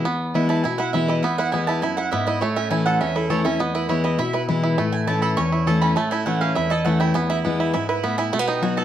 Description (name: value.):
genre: bluegrass.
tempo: 203 BPM.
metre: 4/4.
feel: straight.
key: E major.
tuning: A4 = 436 Hz.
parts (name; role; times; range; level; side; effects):
bluegrass banjo; melody; 0.0-8.8 s; A3 to A4; -24 LUFS; right 4 dB; plate reverb.
picked steel-string acoustic guitar; accompaniment; 0.0-8.8 s; E2 to F#4; -22 LUFS; left 2 dB; none.
mandolin; stabs; 0.5-8.8 s; A4 to C#6; -25 LUFS; right 4 dB; none.
room: moderate studio reverb, RT60 0.6 s.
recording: dark, warm production.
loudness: -19 LUFS.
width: side -10 dB against mid.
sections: 0.1-8.8 A section.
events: mandolin solo 0.1-8.8.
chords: 0.1 E; 2.4 A; 3.6 E; 4.8 A; 7.1 E; 8.3 B.